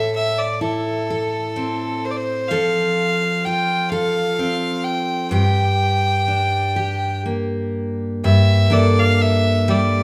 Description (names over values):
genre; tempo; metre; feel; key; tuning
celtic folk, Celtic slow air; 42 BPM (dotted quarters); 6/8; rubato; G dorian; A4 = 440 Hz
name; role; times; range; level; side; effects
clear fiddle; melody; 0.0-10.0 s; A4 to G5; -23 LUFS; equal; none
picked steel-string acoustic guitar; accompaniment; 0.0-10.0 s; G2 to A4; -21 LUFS; equal; none
room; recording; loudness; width
moderate recital hall reverb, RT60 1.3 s; none; -19 LUFS; mono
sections
0.0-8.2 A section; 8.2-10.0 B section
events
none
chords
0.0 Am; 2.5 F; 5.3 Gm; 8.2 Gmadd9